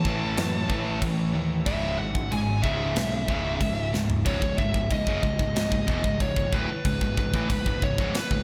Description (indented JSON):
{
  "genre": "heavy metal",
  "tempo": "93 BPM",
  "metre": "4/4",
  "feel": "straight",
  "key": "C# minor",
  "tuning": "A4 = 441 Hz",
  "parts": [
    { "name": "high-gain lead guitar", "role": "melody", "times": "0.0-8.4 s", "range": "B4 to A5", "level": "-33 LUFS", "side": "equal", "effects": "distortion, slapback echo" },
    { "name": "bright studio string section", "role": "sustained chords", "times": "0.0-4.2 s", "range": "C#3 to C#5", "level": "-40 LUFS", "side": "equal", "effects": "none" },
    { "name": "heavy high-gain guitar", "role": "riff", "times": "0.0-8.4 s", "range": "C#2 to A3", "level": "-33 LUFS", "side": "equal", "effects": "distortion" },
    { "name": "high-gain distorted guitar", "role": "riff", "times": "0.0-8.4 s", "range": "C#2 to A3", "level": "-34 LUFS", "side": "equal", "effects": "distortion" },
    { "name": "fuzz picked electric bass", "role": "bass", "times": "0.0-8.4 s", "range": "C#1 to F#2", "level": "-33 LUFS", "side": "equal", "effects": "overdrive" },
    { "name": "tight metal drum kit", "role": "drums", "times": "0.1-8.4 s", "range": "crash cymbal, kick drum, snare drum, toms", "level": "-31 LUFS", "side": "equal", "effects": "none" }
  ],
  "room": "moderate lush hall reverb, RT60 1.7 s, studio reverb",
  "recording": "big arena sound",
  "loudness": "-26 LUFS",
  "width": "mono",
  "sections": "0.0-4.3 A section; 4.3-8.4 B section",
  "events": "lead electric guitar solo 0.0-4.3; drum fill 3.9-4.3",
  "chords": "0.0 A; 1.7 C#m",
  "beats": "0.38 1.03 | 1.67 2.32 2.97 3.61 | 4.26 4.91 5.56 6.21 | 6.86 7.50 8.15"
}